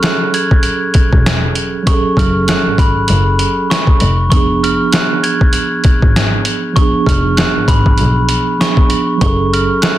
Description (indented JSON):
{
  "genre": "hip hop, boom-bap hip-hop",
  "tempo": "98 BPM",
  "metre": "4/4",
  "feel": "swing 56% on 16ths",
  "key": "F# harmonic minor",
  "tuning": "A4 = 439 Hz",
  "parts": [
    { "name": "glockenspiel with rubber mallets", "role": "melody", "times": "0.0-10.0 s", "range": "B5 to G#6", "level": "-18 LUFS", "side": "equal", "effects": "high-pass filter, low-pass filter, ping-pong delay" },
    { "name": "mellow tine electric piano", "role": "accompaniment", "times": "0.0-10.0 s", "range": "F3 to A4", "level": "-17 LUFS", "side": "right 4 dB", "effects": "medium stereo tremolo, cassette tape, high-pass filter, low-pass filter" },
    { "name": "trip hop sampler-style drum kit", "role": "drums", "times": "0.0-10.0 s", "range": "hi-hat, kick drum, snare drum", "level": "-13 LUFS", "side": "equal", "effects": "none" },
    { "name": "rich double bass", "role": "bass", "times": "1.1-9.6 s", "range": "E1 to Cb2", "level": "-16 LUFS", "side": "equal", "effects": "none" },
    { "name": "finger snaps", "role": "percussion", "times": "9.8-10.0 s", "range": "none", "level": "-27 LUFS", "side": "left 6 dB", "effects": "none" }
  ],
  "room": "light reverb",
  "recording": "dense, heavily limited modern master",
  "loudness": "-10 LUFS",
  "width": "side -14 dB against mid",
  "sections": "0.0-10.0 A section",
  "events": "none",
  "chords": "0.0 F#madd9; 4.0 Fdim7; 9.2 F#madd9"
}